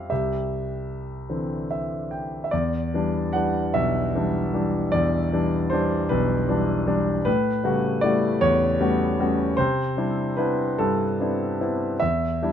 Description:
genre	classical, lyrical solo piano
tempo	50 BPM (dotted quarters)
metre	6/8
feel	uneven beats, rubato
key	E minor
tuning	A4 = 441 Hz
part	clear concert grand piano	solo	0.0-12.5 s	B1 to G5	-21 LUFS	equal	none
room	light reverb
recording	close, detailed microphones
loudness	-21 LUFS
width	side -9 dB against mid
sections	0.0-2.5 A section; 2.5-12.5 B section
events	grand piano fill 1.3-2.5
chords	0.1 Cadd9; 2.5 Em7; 7.3 A13; 9.6 Cmaj9; 12.0 Em7

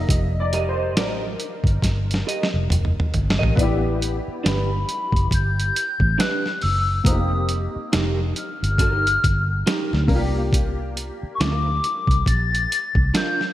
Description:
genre	R&B, neo-soul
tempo	69 BPM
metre	4/4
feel	swing 59% on 16ths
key	unclear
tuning	A4 = 440 Hz
part	warm upright piano	accompaniment	0.0-13.5 s	G3 to E5	-29 LUFS	left 2 dB	ensemble chorus
part	vintage muted fingered electric bass	bass	0.0-13.1 s	F1 to D2	-22 LUFS	equal	none
part	boom bap sampler-style drum kit	drums	0.1-13.5 s	hi-hat, kick drum, snare drum, toms	-22 LUFS	equal	none
part	electric guitar through a small old amp	second line	0.5-13.4 s	D4 to Eb5	-29 LUFS	right 4 dB	analog chorus
part	hollow clarinet-like synth lead	melody	4.5-13.5 s	B5 to A6	-24 LUFS	left 3 dB	chorus
room	light reverb, digital ambience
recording	bright 1980s-style digital production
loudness	-19 LUFS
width	side -14 dB against mid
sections	0.0-3.6 A section; 3.6-13.5 B section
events	upright piano solo 0.0-3.6; drum fill 1.8-3.6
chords	0.0 F9sus4; 3.6 A9sus4; 7.0 F9sus4; 10.1 C9sus4

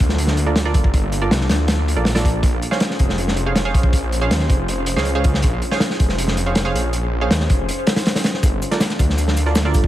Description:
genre	drum and bass, jungle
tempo	160 BPM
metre	4/4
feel	straight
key	unclear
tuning	A4 = 440 Hz
part	warbly tape-like pad	sustained chords	0.0-9.9 s	Bb3 to C5	-26 LUFS	left 1 dB	chorus, built-in reverb
part	detuned saw bass	bass	0.0-9.9 s	F1 to Eb2	-20 LUFS	equal	tube saturation
part	crunchy breakbeat drum kit	drums	0.0-9.9 s	hi-hat, kick drum, snare drum	-18 LUFS	equal	none
part	filtered dub chord stab	stabs	0.5-9.9 s	F4 to F5	-25 LUFS	right 4 dB	chorus, dub echo
part	breakbeat sampler-style drum kit	drums	8.4-9.8 s	hi-hat, shaker, snare drum	-31 LUFS	left 3 dB	overdrive, high-pass filter on snare, high-pass filter on perc, high-pass filter on hats, high-pass filter on room
room	studio ambience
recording	vinyl crackle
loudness	-16 LUFS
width	side -14 dB against mid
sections	0.0-9.9 A section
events	none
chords	0.0 Gm9; 2.4 Bbm9; 8.4 Gm9

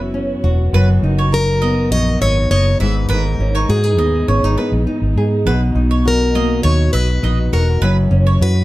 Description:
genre	acoustic pop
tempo	102 BPM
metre	4/4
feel	straight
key	B major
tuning	A4 = 440 Hz
part	picked plugged-in steel-string acoustic guitar	melody	0.0-8.6 s	E4 to D#5	-20 LUFS	left 2 dB	plate reverb
part	nylon-string guitar	accompaniment	0.0-8.6 s	F#2 to A#4	-19 LUFS	left 1 dB	none
part	warm studio string section	sustained chords	0.0-8.6 s	B2 to A#4	-29 LUFS	right 1 dB	none
part	vintage muted fingered electric bass	bass	0.0-8.6 s	E1 to G#2	-15 LUFS	equal	none
part	bowl-back mandolin	arpeggios	0.7-8.4 s	B4 to F#5	-24 LUFS	right 4 dB	none
room	light reverb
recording	none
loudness	-13 LUFS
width	side -17 dB against mid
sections	0.0-8.6 A section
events	none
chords	0.0 F#7sus4; 0.7 Bmaj7/F#; 2.8 Emaj7/G#; 5.5 Bmaj7; 7.8 F#7sus4

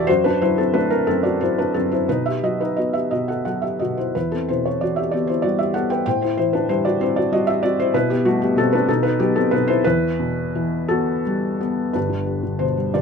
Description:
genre	classical, lyrical solo piano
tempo	54-65 BPM (dotted quarters)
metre	6/8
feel	rubato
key	E minor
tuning	A4 = 442 Hz
part	felt-muted upright piano	solo	0.0-13.0 s	G1 to G5	-18 LUFS	left 1 dB	none
room	light reverb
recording	close, detailed microphones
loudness	-18 LUFS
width	side -6 dB against mid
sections	0.0-11.9 A section; 11.9-13.0 B section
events	none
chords	0.1 F#dim; 2.1 B; 4.2 Em; 6.1 Am7; 7.9 Em/B; 8.9 B; 9.9 Emadd9; 11.9 G

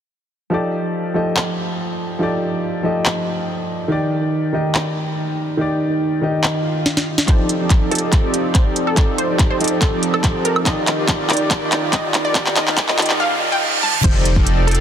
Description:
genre	future bass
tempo	142 BPM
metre	4/4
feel	half-time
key	unclear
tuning	A4 = 440 Hz
part	warm concert grand piano	accompaniment	0.5-14.1 s	Eb3 to Eb5	-21 LUFS	equal	sidechain pumping, digital delay
part	trap drum kit	drums	1.4-14.8 s	crash cymbal, handclaps, hi-hat, snare drum, toms, woodblock	-21 LUFS	equal	none
part	swell, riser and reverse cymbal	sound effects	6.6-14.0 s	none	-27 LUFS	right 5 dB	none
part	wide unison pluck	melody	7.3-14.8 s	A4 to A5	-23 LUFS	equal	sidechain pumping, digital delay
part	soft supersaw	riff	7.3-14.8 s	Eb3 to D5	-21 LUFS	right 1 dB	lush chorus, sidechain pumping, low-pass filter
part	saturated sub bass	bass	7.3-14.8 s	Eb1 to F1	-22 LUFS	equal	sidechain pumping, high-pass filter
part	electronic kick drum	drums	7.3-14.4 s	none	-16 LUFS	equal	none
room	moderate huge ambient reverb, RT60 5.0 s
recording	dense, heavily limited modern master, high-pass filter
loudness	-16 LUFS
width	side -9 dB against mid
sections	0.5-7.3 A section; 7.3-14.0 B section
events	swell 6.6-7.3; drum fill 6.9-7.3, 7.3-13.2, 13.8; build-up 7.3-14.0; filter sweep on supersaw synth 7.3-14.0; filter sweep 7.3-14.0; reverse cymbal 13.2-14.0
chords	0.5 F13; 3.9 Ebmaj7; 7.3 F13; 10.7 Ebmaj7; 14.0 F13

